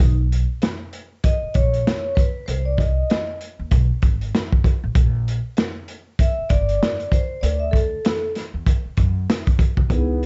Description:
hip hop, jazz-hop; 97 BPM; 4/4; swing 61% on 16ths; A4 = 440 Hz
vibraphone with soft mallets; accompaniment; 0.0-10.2 s; B3 to E5; -27 LUFS; equal
upright bass; bass; 0.0-10.3 s; G1 to F#2; -24 LUFS; equal
crunchy breakbeat drum kit; drums; 0.0-10.3 s; hi-hat, kick drum, snare drum; -22 LUFS; equal; vintage 12-bit sampler grit
breathy trombone; melody; 9.9-10.3 s; B3; -28 LUFS; equal
little or no reverb; dark, warm production, nothing above 7.9 kHz; -21 LUFS; mono
0.0-9.9 A section
vibraphone solo 0.0-9.9
0.0 Bsus2; 2.5 Cm; 3.7 G#m; 5.0 A#6; 7.4 D

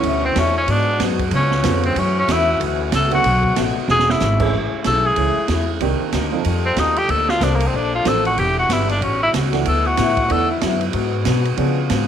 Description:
jazz, big band swing; 187 BPM; 4/4; swing 61% on 8ths; F# minor; A4 = 441 Hz
clear tenor saxophone; melody; 0.0-10.6 s; Bb3 to A4; -19 LUFS; equal
picked acoustic archtop guitar; accompaniment; 0.0-12.1 s; F#2 to D5; -26 LUFS; left 12 dB
warm baby grand piano; accompaniment; 0.0-11.8 s; D3 to A4; -25 LUFS; right 12 dB
clear trombone section; sustained chords; 0.0-12.1 s; Bb2 to A4; -27 LUFS; left 9 dB; stereo widening
upright bass; bass; 0.0-12.1 s; E1 to C#3; -21 LUFS; equal
open jazz drum kit; drums; 0.0-12.0 s; crash cymbal, hi-hat, kick drum, ride cymbal, snare drum; -24 LUFS; right 7 dB
light reverb, small room ambience; 1960s-style stereo with parts hard left and right; -16 LUFS; side -9 dB against mid
0.0-4.5 A section; 4.5-12.1 A section
tenor saxophone solo 0.0-12.1; drum fill 3.9-4.2
0.0 Bm11; 0.7 G#m7b5; 1.3 C#7b9; 2.0 F#m7; 3.2 Bm7; 3.9 E13; 4.5 Amaj7; 5.8 Cm9; 6.5 F9; 7.1 Bbmaj9; 8.4 Em7; 9.0 A13; 9.7 D69; 10.9 G#m7b5

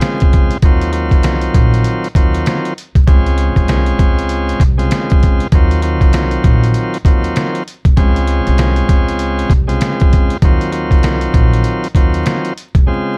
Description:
hip hop, boom-bap hip-hop; 98 BPM; 4/4; swing 62% on 16ths; Eb dorian; A4 = 436 Hz
bright tonewheel organ; accompaniment; 0.0-13.2 s; Db3 to F4; -20 LUFS; equal; overdrive, cassette tape, high-pass filter, low-pass filter
trip hop sampler-style drum kit; drums; 0.0-12.9 s; hi-hat, kick drum, snare drum; -14 LUFS; equal
upright bass; bass; 0.3-12.9 s; Bb1 to Eb2; -19 LUFS; equal
little or no reverb; dark, warm production, vinyl crackle; -13 LUFS; mono
0.0-13.2 A section
0.0 Dbmaj7; 0.6 Ebm69; 3.1 Dbmaj7; 5.5 Ebm69; 8.0 Dbmaj7; 10.4 Ebm69

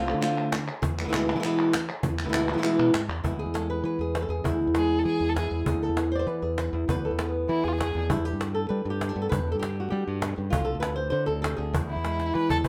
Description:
flamenco; 198 BPM; 4/4; straight; E phrygian dominant; A4 = 440 Hz
flamenco guitar; melody; 0.0-12.7 s; E2 to D5; -30 LUFS; equal
modern bright fingered electric bass; bass; 0.0-12.7 s; C2 to G3; -33 LUFS; equal
palmas hand claps; percussion; 0.1-3.2 s; -35 LUFS; equal
cajon; percussion; 0.5-12.7 s; -33 LUFS; equal
dark violin; second line; 4.8-8.0, 11.9-12.7 s; E4 to B4; -32 LUFS; equal
moderate studio reverb, RT60 0.5 s; -27 LUFS; mono
0.0-3.2 A section; 3.2-12.7 B section
drum fill 12.0-12.7
0.0 Dm7; 0.8 E; 8.1 G; 10.5 Dm7; 11.7 E

